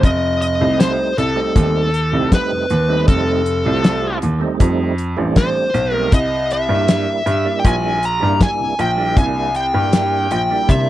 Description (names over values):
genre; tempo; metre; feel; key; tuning
straight-eighth soul blues; 79 BPM; 4/4; straight; F mixolydian; A4 = 441 Hz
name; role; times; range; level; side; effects
smooth overdriven lead guitar; melody; 0.0-10.9 s; A4 to Bb5; -19 LUFS; left 1 dB; none
percussive tonewheel organ; accompaniment; 0.0-10.9 s; G3 to F4; -22 LUFS; right 6 dB; slow rotary speaker, overdrive, chorus vibrato
bright baby grand piano; bass; 0.0-10.9 s; F1 to C3; -19 LUFS; equal; none
warm soul drum kit; drums; 0.0-10.9 s; hi-hat, kick drum, snare drum; -14 LUFS; left 1 dB; none
room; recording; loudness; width
little or no reverb; dry, close 1970s-style studio recording; -14 LUFS; side -14 dB against mid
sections
0.0-10.9 A section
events
none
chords
0.0 F9; 6.1 C9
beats
| 0.03 0.79 1.56 2.32 | 3.08 3.84 4.60 5.36 | 6.12 6.88 7.64 8.40 | 9.16 9.93 10.69